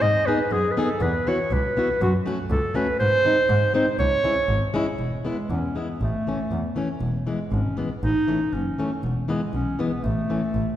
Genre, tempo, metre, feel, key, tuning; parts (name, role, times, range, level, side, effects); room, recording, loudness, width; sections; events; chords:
alpine folk, alpine dance band; 120 BPM; 2/4; straight; C# minor, E major from 5.0 s; A4 = 440 Hz
dark clarinet; melody; 0.0-10.8 s; G#3 to D#5; -24 LUFS; right 1 dB
clear double bass; bass; 0.0-10.6 s; E1 to G#2; -26 LUFS; equal
fingerpicked plugged-in steel-string acoustic guitar; accompaniment; 0.3-10.4 s; E3 to G#4; -27 LUFS; left 2 dB
wet church reverb, RT60 2.5 s; recorded in a church or concert hall; -21 LUFS; side -12 dB against mid
0.0-5.0 A section; 5.0-10.8 B section
0.0 G#m; 1.0 Esus2; 2.0 F#m; 3.0 G#; 4.0 C#m; 5.0 E; 6.0 A; 7.0 E; 8.0 A; 9.0 E; 10.0 A